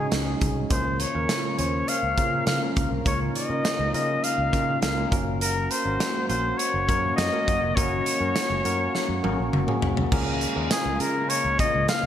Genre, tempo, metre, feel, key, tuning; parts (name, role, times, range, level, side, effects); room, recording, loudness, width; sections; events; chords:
1980s-style pop; 102 BPM; 4/4; straight; Db major; A4 = 437 Hz
clear flugelhorn; melody; 0.0-12.1 s; Ab4 to F5; -26 LUFS; left 2 dB; digital delay
tine electric piano; accompaniment; 0.0-12.1 s; Ab3 to C5; -30 LUFS; equal; medium stereo tremolo
warm analog pad; sustained chords; 0.0-12.1 s; Db3 to Bb4; -34 LUFS; left 1 dB
fretless electric bass; bass; 0.0-12.1 s; F1 to Db3; -30 LUFS; equal
modern studio drum kit; drums; 0.1-12.0 s; crash cymbal, hi-hat, kick drum, snare drum, tambourine, toms; -27 LUFS; right 1 dB; gated reverb
moderate plate reverb, RT60 2.6 s; bright 1980s-style digital production, lossy compression artefacts; -22 LUFS; side -10 dB against mid
0.0-10.1 A section; 10.1-12.1 B section
drum fill 8.9-10.1
0.0 Dbsus2; 0.7 Bbm/Db; 5.1 Gb; 10.1 Db6